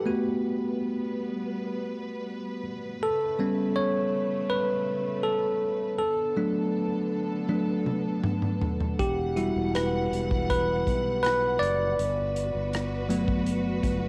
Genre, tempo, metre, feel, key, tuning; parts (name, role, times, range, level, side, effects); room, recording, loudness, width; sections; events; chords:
pop ballad; 81 BPM; 4/4; straight; G major; A4 = 439 Hz
bell-like tine electric piano; accompaniment; 0.0-14.1 s; F#3 to D5; -29 LUFS; equal; cassette tape
warm studio string section; sustained chords; 0.0-14.1 s; C#3 to F#5; -38 LUFS; equal; cassette tape
loose indie drum kit; drums; 7.5-14.0 s; hi-hat, kick drum, rim click, toms; -33 LUFS; equal
sustaining fretless electric bass; bass; 9.0-14.1 s; E1 to B1; -35 LUFS; equal; subtle chorus
studio ambience; home recording on cassette; -28 LUFS; mono
0.0-14.1 A section
tine electric piano solo 0.0-14.1; drum fill 7.5-9.0
0.1 Gmaj7; 3.0 A7; 6.0 Bm7; 9.0 Emadd9; 12.0 Gmaj7